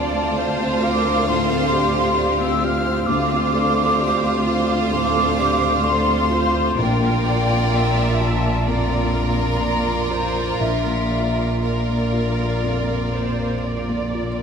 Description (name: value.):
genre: cinematic, emotional film score for orchestra.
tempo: 58-67 BPM.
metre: 4/4.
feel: rubato.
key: unclear.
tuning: A4 = 439 Hz.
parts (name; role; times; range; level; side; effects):
rich studio violin section; melody; 0.0-14.4 s; D5 to F5; -29 LUFS; equal; none.
clear studio violin section; second line; 0.0-14.4 s; F4 to C5; -26 LUFS; right 2 dB; none.
hollow small flute group; second line; 0.0-13.6 s; D5 to F6; -24 LUFS; left 1 dB; none.
felt-muted upright piano; accompaniment; 0.0-14.4 s; Bb1 to D5; -25 LUFS; left 2 dB; none.
rich studio viola section; accompaniment; 0.0-14.4 s; F4 to E5; -28 LUFS; right 1 dB; none.
rich studio double bass section; bass; 0.0-14.4 s; Bb1 to D2; -24 LUFS; right 1 dB; none.
warm studio cello section; bass; 0.0-14.4 s; D2 to Bb2; -26 LUFS; equal; none.
room: wet cathedral reverb, RT60 5.7 s.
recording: in a vast, echoing space.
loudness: -17 LUFS.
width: side -6 dB against mid.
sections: 0.0-14.4 A section.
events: none.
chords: 0.0 Dm7; 6.8 Bb.